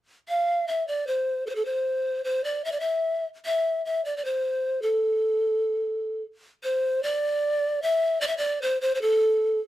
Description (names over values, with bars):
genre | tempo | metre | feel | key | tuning
andean folk | 75 BPM | 2/4 | straight | A minor | A4 = 437 Hz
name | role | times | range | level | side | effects
breathy mellow pan flute | solo | 0.3-9.6 s | A4 to F5 | -23 LUFS | equal | none
room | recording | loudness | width
moderate studio reverb, RT60 0.5 s | band playing live in one room | -24 LUFS | side -14 dB against mid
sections
0.3-6.6 A section; 6.6-9.7 B section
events
none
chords
none